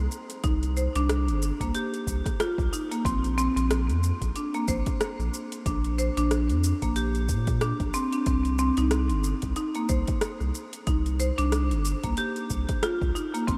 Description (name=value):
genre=organic downtempo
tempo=92 BPM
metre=4/4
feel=swing 57% on 16ths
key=C minor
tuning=A4 = 441 Hz
part: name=warm sub bass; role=bass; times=0.0-13.6 s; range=G1 to Bb2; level=-29 LUFS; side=equal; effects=sidechain pumping
part: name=deep house drum kit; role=drums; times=0.1-13.6 s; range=hi-hat, rim click, shaker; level=-37 LUFS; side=equal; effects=overdrive
part: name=marimba with medium hard mallets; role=arpeggios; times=0.4-13.6 s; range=Bb3 to C5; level=-31 LUFS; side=equal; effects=delay
part: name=electronic kick drum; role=drums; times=0.4-13.6 s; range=none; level=-32 LUFS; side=equal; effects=overdrive
room=moderate huge ambient reverb, RT60 8.0 s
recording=dreamy mix soaked in reverb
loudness=-27 LUFS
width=mono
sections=0.0-13.6 A section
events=none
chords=0.0 C5; 3.0 Bb; 8.3 Cm